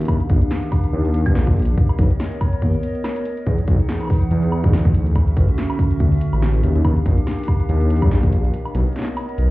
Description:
IDM; 142 BPM; 4/4; swing 56% on 16ths; A4 = 445 Hz
warbly tape-like pad; sustained chords; 0.0-9.5 s; D3 to F#5; -25 LUFS; equal; chorus, built-in reverb
dark detuned saw bass; bass; 0.0-9.5 s; A1 to G#2; -18 LUFS; equal
electro analog drum machine; drums; 0.0-9.5 s; hi-hat, snare drum, woodblock; -30 LUFS; equal; studio ambience, dub echo
electronic kick drum; drums; 0.1-8.3 s; -17 LUFS; equal; studio ambience
digital ambience; heard muffled through a wall, club reverb, EQ; -16 LUFS; side -19 dB against mid
0.0-9.5 A section
break 8.5-9.5
0.0 D#maj9; 1.8 Bmaj9; 3.5 Emaj9; 4.9 Dmaj9; 6.6 D#maj9; 8.5 Bmaj9
| 0.09 0.51 0.93 1.35 | 1.78 2.20 2.62 3.04 | 3.47 3.89 4.31 4.73 | 5.16 5.58 6.00 6.42 | 6.85 7.27 7.69 8.11 | 8.54 8.96 9.38

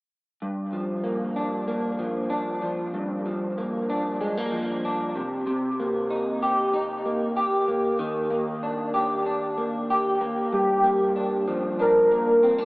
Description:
indie pop; 95 BPM; 4/4; straight; A4 = 440 Hz
electric guitar through a small old amp; accompaniment; 0.4-12.7 s; G2 to G4; -24 LUFS; equal; analog chorus, vibrato effect, dub echo
warm velvety synth lead; melody; 10.5-12.7 s; G4 to Bb4; -19 LUFS; equal; wide subtle chorus, dub echo
wet spring reverb, RT60 1.4 s; echo-heavy mix, small speaker sound; -22 LUFS; side -24 dB against mid
0.4-10.5 A section; 10.5-12.7 B section
0.4 Gm7; 5.2 Cm7; 8.0 Ebmaj7; 10.5 Gm7
| 0.41 1.04 1.68 2.31 | 2.94 3.58 4.21 4.84 | 5.47 6.11 6.74 7.37 | 8.00 8.63 9.27 9.90 | 10.53 11.16 11.80 12.43

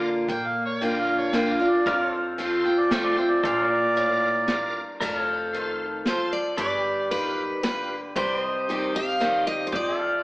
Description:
honky-tonk and classic country; 114 BPM; 3/4; straight; Bb major; A4 = 440 Hz
bright tonewheel organ; accompaniment; 0.0-9.5 s; Eb4 to D5; -35 LUFS; right 1 dB; slow rotary speaker, overdrive, chorus vibrato
picked steel-string acoustic guitar; accompaniment; 0.0-10.2 s; F2 to G4; -26 LUFS; equal
pedal steel guitar; sustained chords; 0.0-10.2 s; G4 to F5; -29 LUFS; equal
overdriven harmonica; second line; 0.3-5.0 s; C4 to G5; -25 LUFS; right 1 dB
upright bass; bass; 0.3-10.2 s; F1 to Bb2; -43 LUFS; equal
vintage brush drum kit; drums; 0.3-9.9 s; crash cymbal, hi-hat, kick drum, snare drum; -30 LUFS; equal
picked steel-string acoustic guitar; melody; 5.0-10.2 s; A4 to F5; -27 LUFS; equal
wet stone room reverb, RT60 1.3 s; band playing live in one room, AM radio sound; -22 LUFS; side -22 dB against mid
0.0-5.0 A section; 5.0-10.2 B section
harmonica solo 0.0-5.0
0.0 Bb; 1.9 F; 3.4 Bb; 5.0 F; 6.6 G7; 8.2 Cm; 9.7 F
| 0.29 0.82 1.34 | 1.87 2.39 2.92 | 3.44 3.96 4.49 | 5.01 5.54 6.06 | 6.59 7.11 7.63 | 8.16 8.68 9.21 | 9.73

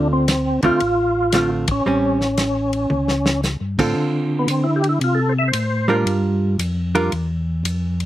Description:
soul jazz organ trio; 114 BPM; 4/4; swing 67% on 8ths; D minor; A4 = 440 Hz
percussive tonewheel organ; melody; 0.0-6.0 s; B3 to E5; -20 LUFS; equal; slow rotary speaker, overdrive, chorus vibrato, slapback echo
hollow-body jazz guitar; accompaniment; 0.0-7.1 s; D3 to Bb4; -19 LUFS; right 2 dB
mellow tonewheel organ; bass; 0.0-8.1 s; A1 to D3; -22 LUFS; equal; chorus vibrato, slow rotary speaker
warm soul drum kit; drums; 0.3-8.1 s; crash cymbal, hi-hat, kick drum, ride cymbal, snare drum, toms; -25 LUFS; equal
little or no reverb; recorded outdoors, with no room sound; -17 LUFS; side -13 dB against mid
0.0-4.0 A section; 4.0-8.1 B section
band accent 1.6; drum fill 2.9-3.4; tonewheel organ solo 4.0-8.1
0.0 Dm7; 1.9 A7#9; 4.0 Dm7; 6.1 Gm7
0.28 0.80 1.33 | 1.85 2.38 2.91 3.43 | 3.96 4.49 5.01 5.54 | 6.07 6.59 7.12 7.64

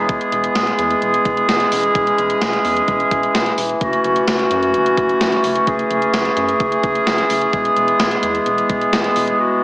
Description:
synth-pop; 129 BPM; 4/4; straight; A4 = 440 Hz
warm woodwind section; sustained chords; 0.0-9.6 s; E3 to G#4; -15 LUFS; equal
rubbery square bass; bass; 0.0-9.3 s; E1 to F#2; -29 LUFS; equal
gated 80s digital drum machine; drums; 0.1-9.4 s; hi-hat, kick drum, snare drum; -22 LUFS; equal; gated reverb, gated reverb snare
wet lush hall reverb, RT60 1.6 s; dreamy mix soaked in reverb, small speaker sound; -14 LUFS; side -21 dB against mid
0.0-9.6 A section
0.0 E; 3.8 F#m7; 7.5 E
| 0.09 0.56 1.02 1.49 | 1.95 2.42 2.88 3.35 | 3.81 4.28 4.74 5.21 | 5.67 6.14 6.60 7.07 | 7.53 8.00 8.46 8.93 | 9.39

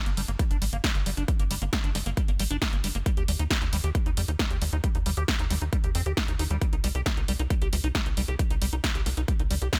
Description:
uplifting trance; 135 BPM; 4/4; straight; A4 = 439 Hz
liquid acid bass; arpeggios; 0.1-9.8 s; G3 to G4; -38 LUFS; equal; phaser, subtle chorus, sidechain pumping, digital delay
tight sequencer bass; bass; 0.1-9.7 s; G1 to F2; -31 LUFS; equal; sidechain pumping
big-room dance drum kit; drums; 0.1-9.8 s; hi-hat, snare drum; -33 LUFS; equal; sidechain pumping on hats, sidechain pumping on cymbals
electronic kick drum; drums; 0.4-9.8 s; -29 LUFS; equal
little or no reverb; -27 LUFS; mono
0.0-9.8 A section
0.0 N.C.; 3.1 Eb; 6.6 C5
0.39 0.84 | 1.28 1.73 2.17 2.62 | 3.06 3.51 3.95 4.39 | 4.84 5.28 5.73 6.17 | 6.62 7.06 7.51 7.95 | 8.39 8.84 9.28 9.73

